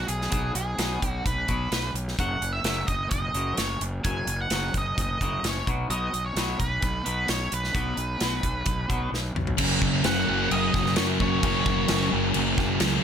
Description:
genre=quiet-loud alternative rock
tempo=130 BPM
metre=4/4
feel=straight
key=unclear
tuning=A4 = 440 Hz
part: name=octave-fuzz lead guitar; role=melody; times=0.0-12.1 s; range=F#4 to G#5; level=-30 LUFS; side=right 1 dB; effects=distortion
part: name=twangy electric guitar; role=arpeggios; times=0.0-9.6 s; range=F#2 to B3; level=-35 LUFS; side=left 3 dB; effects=lush chorus
part: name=fuzz fingered electric bass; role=bass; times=0.0-13.0 s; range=F#1 to F#2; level=-30 LUFS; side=equal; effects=overdrive
part: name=big rock drum kit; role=drums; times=0.1-12.9 s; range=crash cymbal, hi-hat, kick drum, snare drum, toms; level=-28 LUFS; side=equal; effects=none
part: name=dark French horn section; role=sustained chords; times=9.6-13.0 s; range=F#3 to A#4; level=-38 LUFS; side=left 9 dB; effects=stereo widening
part: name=fuzz guitar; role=riff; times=9.6-13.0 s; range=F#2 to C#4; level=-30 LUFS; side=right 1 dB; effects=distortion
part: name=sludgy distorted guitar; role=riff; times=9.6-13.0 s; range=F#2 to F#3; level=-29 LUFS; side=left 14 dB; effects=overdrive
part: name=thick fuzz guitar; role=riff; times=9.6-13.0 s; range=F#2 to F#3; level=-28 LUFS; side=right 14 dB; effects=distortion
room=light reverb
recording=none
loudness=-23 LUFS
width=side -8 dB against mid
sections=0.0-9.6 A section; 9.6-13.0 B section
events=drum fill 9.1-9.6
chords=0.0 B5; 2.2 F#5; 5.7 B5; 9.6 F#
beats=| 0.33 0.80 1.26 1.73 | 2.19 2.65 3.12 3.58 | 4.04 4.51 4.97 5.43 | 5.90 6.36 6.82 7.29 | 7.75 8.21 8.67 9.13 | 9.59 10.05 10.51 10.97 | 11.43 11.88 12.34 12.80

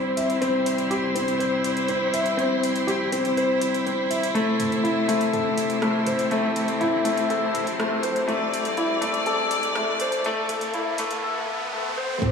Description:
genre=piano and strings electronica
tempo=122 BPM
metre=4/4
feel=straight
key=unclear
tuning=A4 = 440 Hz
part: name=rich string quartet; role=sustained chords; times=0.0-12.3 s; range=C3 to D5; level=-26 LUFS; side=equal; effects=low-pass filter
part: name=warm concert grand piano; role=riff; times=0.0-12.3 s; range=A3 to E5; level=-23 LUFS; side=left 2 dB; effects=digital delay
part: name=deep house drum kit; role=drums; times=0.2-12.3 s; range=hi-hat, rim click, toms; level=-34 LUFS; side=equal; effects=overdrive
part: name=riser and sub drop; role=sound effects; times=7.0-12.3 s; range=none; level=-33 LUFS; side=right 2 dB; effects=none
part: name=electronic kick drum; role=drums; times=12.2-12.3 s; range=none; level=-27 LUFS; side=equal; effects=overdrive
room=wet lush hall reverb, RT60 1.8 s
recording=high-pass filter, studio reverb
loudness=-21 LUFS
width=side -6 dB against mid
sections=0.0-12.2 A section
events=build-up 0.0-12.2; filter sweep on string quartet 0.0-12.2; riser 7.0-12.2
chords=0.0 C; 4.4 Am/C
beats=| 0.42 0.91 1.40 1.89 | 2.38 2.88 3.37 3.86 | 4.35 4.84 5.33 5.83 | 6.32 6.81 7.30 7.79 | 8.29 8.78 9.27 9.76 | 10.25 10.74 11.24 11.73 | 12.22

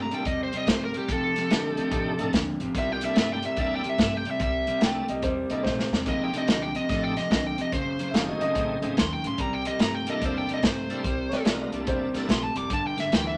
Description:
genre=electric blues shuffle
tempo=145 BPM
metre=4/4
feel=swing 65% on 8ths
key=unclear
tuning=A4 = 440 Hz
part: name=smooth overdriven lead guitar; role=melody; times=0.0-13.4 s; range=G4 to D6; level=-32 LUFS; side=equal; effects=none
part: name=bright tonewheel organ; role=accompaniment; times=0.0-13.4 s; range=A3 to Bb4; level=-37 LUFS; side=equal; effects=slow rotary speaker, overdrive, chorus vibrato
part: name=electric guitar at the edge of break-up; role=riff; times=0.0-13.4 s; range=F2 to A3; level=-33 LUFS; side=equal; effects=none
part: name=upright bass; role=bass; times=0.0-13.4 s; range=F1 to G2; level=-41 LUFS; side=equal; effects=none
part: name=vintage drum kit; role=drums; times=0.1-13.2 s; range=hi-hat, kick drum, snare drum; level=-29 LUFS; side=equal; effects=none
part: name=dark upright piano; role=second line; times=4.8-12.1 s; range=F#4 to G5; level=-32 LUFS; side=equal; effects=none
room=moderate small room reverb, RT60 0.6 s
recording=none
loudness=-26 LUFS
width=mono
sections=0.0-13.4 A section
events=drum fill 5.7-6.1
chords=0.0 C13; 1.1 F13; 2.7 C13; 6.1 F13; 7.7 F#dim7; 9.4 C13; 12.7 G13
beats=0.26 0.67 | 1.09 1.50 1.92 2.33 | 2.75 3.16 3.58 3.99 | 4.41 4.82 5.24 5.65 | 6.07 6.48 6.90 7.31 | 7.73 8.14 8.56 8.97 | 9.39 9.80 10.22 10.63 | 11.05 11.46 11.87 12.29 | 12.70 13.12

